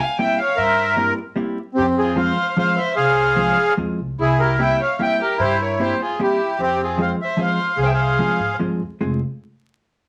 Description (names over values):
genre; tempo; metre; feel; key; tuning
musette waltz; 150 BPM; 3/4; rubato; F harmonic minor; A4 = 442 Hz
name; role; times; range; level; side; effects
accordion; melody; 0.0-8.6 s; C4 to Ab5; -21 LUFS; equal; light tremolo tuning
dark violin; second line; 0.0-8.6 s; C4 to F5; -28 LUFS; equal; none
hollow-body jazz guitar; accompaniment; 0.2-9.2 s; F3 to Ab4; -26 LUFS; equal; none
upright bass; bass; 0.6-9.2 s; F1 to Ab2; -27 LUFS; equal; none
room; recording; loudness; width
wet club reverb, RT60 0.6 s; vinyl crackle; -19 LUFS; mono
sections
0.0-4.2 A section; 4.2-9.0 B section; 9.0-10.1 C section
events
none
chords
0.0 C7; 1.8 Fm; 4.2 C7; 6.6 Fm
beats
0.19 | 0.59 0.99 1.38 | 1.77 2.17 2.57 | 2.97 3.37 3.78 | 4.19 4.59 5.00 | 5.40 5.79 6.19 | 6.59 6.99 7.39 | 7.79 8.19 8.60 | 9.01